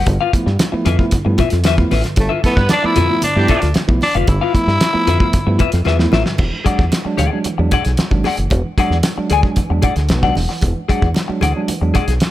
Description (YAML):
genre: funk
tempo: 114 BPM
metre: 4/4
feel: straight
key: E mixolydian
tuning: A4 = 440 Hz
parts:
  - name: electric guitar at the edge of break-up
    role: accompaniment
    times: 0.0-12.3 s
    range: F4 to G#5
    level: -21 LUFS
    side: left 8 dB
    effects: lush chorus
  - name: tine electric piano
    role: stabs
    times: 0.0-12.0 s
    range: G2 to E4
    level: -22 LUFS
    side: right 2 dB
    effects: none
  - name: fingered electric bass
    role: bass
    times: 0.0-12.2 s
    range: E1 to G2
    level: -17 LUFS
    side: equal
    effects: none
  - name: cloth-damped thuddy drum kit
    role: drums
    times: 0.1-12.3 s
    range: crash cymbal, hi-hat, kick drum, snare drum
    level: -18 LUFS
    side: equal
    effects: none
  - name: congas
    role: percussion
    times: 0.1-12.3 s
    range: none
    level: -27 LUFS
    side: right 4 dB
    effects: none
  - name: growling tenor saxophone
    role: melody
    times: 2.2-5.8 s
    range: A3 to E4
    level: -18 LUFS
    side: left 1 dB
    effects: slapback echo
  - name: clear horn section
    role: second line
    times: 2.4-3.6 s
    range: G3 to D5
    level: -23 LUFS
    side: right 3 dB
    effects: none
room: small room ambience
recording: none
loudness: -13 LUFS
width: side -14 dB against mid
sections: 0.0-6.4 A section; 6.4-12.3 B section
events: drum fill 5.9-6.4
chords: 0.1 G13; 6.4 E9